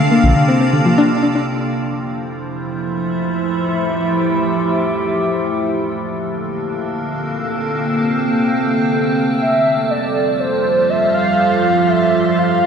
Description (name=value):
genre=IDM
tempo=free time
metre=none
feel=none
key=F major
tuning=A4 = 440 Hz
part: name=warbly nostalgic lead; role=melody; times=0.0-0.9, 9.4-12.7 s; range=C5 to F5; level=-16 LUFS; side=right 1 dB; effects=lush chorus, tape echo
part: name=icy glass pad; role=sustained chords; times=0.0-12.7 s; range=C3 to A4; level=-16 LUFS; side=right 1 dB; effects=chorus, built-in reverb
part: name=soft round pluck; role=arpeggios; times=0.0-1.4 s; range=D3 to D4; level=-15 LUFS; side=left 2 dB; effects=chorus, tape echo
room=wet spring reverb, RT60 2.1 s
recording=echo-heavy mix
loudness=-14 LUFS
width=side -7 dB against mid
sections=0.0-1.5 A section; 1.5-12.7 B section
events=none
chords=0.0 Bbmaj9; 1.5 Fmaj9; 5.4 Bbmaj9; 9.4 Fmaj9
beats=free time